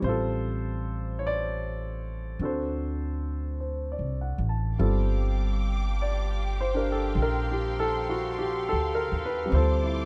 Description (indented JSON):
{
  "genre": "jazz ballad",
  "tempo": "51 BPM",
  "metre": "4/4",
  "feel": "swing 67% on 8ths",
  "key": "G minor",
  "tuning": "A4 = 439 Hz",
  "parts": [
    { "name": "warm grand piano", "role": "accompaniment", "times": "0.0-10.1 s", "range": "G3 to A5", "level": "-32 LUFS", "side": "equal", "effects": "none" },
    { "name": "upright bass", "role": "bass", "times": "0.0-10.1 s", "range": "G1 to Eb2", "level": "-31 LUFS", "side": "equal", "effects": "none" },
    { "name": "dark symphonic string section", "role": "sustained chords", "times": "4.8-10.1 s", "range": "G4 to D6", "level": "-39 LUFS", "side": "equal", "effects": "none" }
  ],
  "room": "little or no reverb",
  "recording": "close, detailed microphones",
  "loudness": "-28 LUFS",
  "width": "mono",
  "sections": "0.0-4.8 A section; 4.8-10.1 B section",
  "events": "none",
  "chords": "0.0 A7alt; 2.4 D7; 4.8 Gm7; 9.5 Dm7"
}